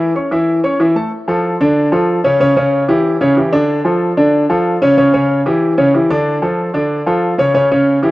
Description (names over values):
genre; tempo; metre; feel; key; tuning
latin; 187 BPM; 4/4; straight; unclear; A4 = 441 Hz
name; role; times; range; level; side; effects
clear grand piano; solo; 0.0-8.1 s; C#3 to C#6; -11 LUFS; equal; none
room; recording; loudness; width
light reverb; rough home demo mix; -11 LUFS; side -18 dB against mid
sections
0.0-1.1 A section; 1.1-8.1 B section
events
none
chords
0.0 A; 1.1 Dm; 2.4 C#dim; 3.7 Dm; 5.0 C#dim; 6.3 Dm; 7.5 C#dim